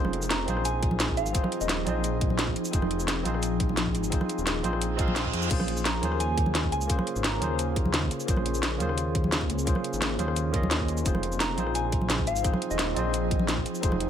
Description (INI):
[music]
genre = liquid drum and bass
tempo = 173 BPM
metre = 4/4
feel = straight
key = Bb minor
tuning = A4 = 440 Hz
[part]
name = barky tine electric piano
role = accompaniment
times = 0.0-14.1 s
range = Bb3 to F5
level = -32 LUFS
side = equal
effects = auto-pan, ping-pong delay
[part]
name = ethereal airy pad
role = sustained chords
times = 0.0-14.1 s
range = Db3 to C5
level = -34 LUFS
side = left 1 dB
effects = ensemble chorus, built-in reverb, phaser, sidechain pumping
[part]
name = dark detuned saw bass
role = bass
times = 0.0-14.1 s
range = Eb1 to F2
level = -30 LUFS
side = equal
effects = none
[part]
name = drum and bass drum kit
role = drums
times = 0.0-14.1 s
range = crash cymbal, hi-hat, rim click, shaker, snare drum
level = -30 LUFS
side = equal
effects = none
[part]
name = congas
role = percussion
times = 0.0-14.0 s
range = none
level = -33 LUFS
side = right 2 dB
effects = none
[part]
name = soft synth bell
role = melody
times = 0.3-2.4, 5.9-7.7, 11.4-13.4 s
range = Eb5 to Bb5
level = -34 LUFS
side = equal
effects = chorus, phaser, digital delay
[part]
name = electronic kick drum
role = drums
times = 0.8-13.9 s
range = none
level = -28 LUFS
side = equal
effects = none
[part]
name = reverse cymbal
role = sound effects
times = 4.9-5.5 s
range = none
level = -35 LUFS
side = right 6 dB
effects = none
[sound]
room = light reverb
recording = none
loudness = -24 LUFS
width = side -9 dB against mid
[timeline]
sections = 0.0-14.1 A section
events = reverse cymbal 4.9-5.5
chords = 0.0 Fm7; 5.5 Bbm9; 11.1 Fm7